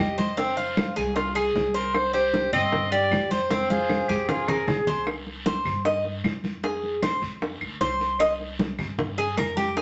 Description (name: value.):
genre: latin, Cuban son and guajira.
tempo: 153 BPM.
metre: 4/4.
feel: straight.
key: C minor.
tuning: A4 = 440 Hz.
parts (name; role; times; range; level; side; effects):
edgy alto saxophone; melody; 0.0-4.7 s; Ab4 to Eb5; -29 LUFS; equal; none.
Cuban tres; arpeggios; 0.0-9.8 s; C4 to Eb5; -28 LUFS; equal; none.
upright bass; bass; 0.0-9.8 s; C2 to G2; -38 LUFS; equal; none.
bongos; percussion; 0.2-9.8 s; none; -34 LUFS; equal; none.
congas; percussion; 0.2-9.8 s; none; -32 LUFS; equal; none.
guiro; percussion; 0.2-9.8 s; none; -44 LUFS; equal; none.
claves; percussion; 0.8-9.6 s; none; -37 LUFS; equal; none.
breathy bright concert flute; second line; 3.7-5.1 s; G4 to Bb4; -32 LUFS; equal; none.
room: wet studio reverb, RT60 0.6 s.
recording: nothing above 8.0 kHz.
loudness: -25 LUFS.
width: mono.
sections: 0.0-5.1 A section; 5.1-9.8 B section.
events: drum fill 3.5-5.1; Cuban tres solo 5.1-9.8.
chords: 0.4 Fm; 1.9 Cm; 3.5 Fm; 5.1 C5; 6.6 Fm; 8.2 C5.